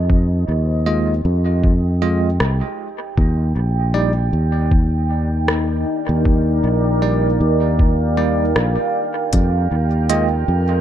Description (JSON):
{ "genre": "ambient dub", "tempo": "78 BPM", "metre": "4/4", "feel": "swing 58% on 16ths", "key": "unclear", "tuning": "A4 = 444 Hz", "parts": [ { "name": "deep dark ambient pad", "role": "sustained chords", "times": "0.0-10.8 s", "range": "Eb4 to Ab5", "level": "-22 LUFS", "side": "right 2 dB", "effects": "chorus, built-in reverb" }, { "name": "fingered electric bass", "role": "bass", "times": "0.0-10.8 s", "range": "Bb1 to F2", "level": "-17 LUFS", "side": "equal", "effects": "tube saturation" }, { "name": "electronic kick drum", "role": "drums", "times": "0.1-9.5 s", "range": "none", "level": "-16 LUFS", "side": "equal", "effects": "none" }, { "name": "barky tine electric piano", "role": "stabs", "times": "0.9-10.3 s", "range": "G3 to Eb5", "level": "-24 LUFS", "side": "right 2 dB", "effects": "medium stereo tremolo, dub echo" }, { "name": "organic electronic drum kit", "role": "drums", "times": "2.4-10.3 s", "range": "hi-hat, rim click", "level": "-24 LUFS", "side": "left 1 dB", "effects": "dub echo" }, { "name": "drifting glass-harmonics texture", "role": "texture", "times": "9.6-10.8 s", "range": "Bb4", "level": "-31 LUFS", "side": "right 8 dB", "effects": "chorus, built-in reverb" } ], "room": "digital ambience", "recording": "dark, warm production, faint mains hum", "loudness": "-15 LUFS", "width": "side -10 dB against mid", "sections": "0.0-10.8 A section", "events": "none", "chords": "0.0 Fm7; 3.2 Ebmaj7; 9.3 Fm7", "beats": "| 0.10 0.87 1.64 2.40 | 3.17 3.94 4.71 5.48 | 6.25 7.02 7.79 8.56 | 9.33 10.10" }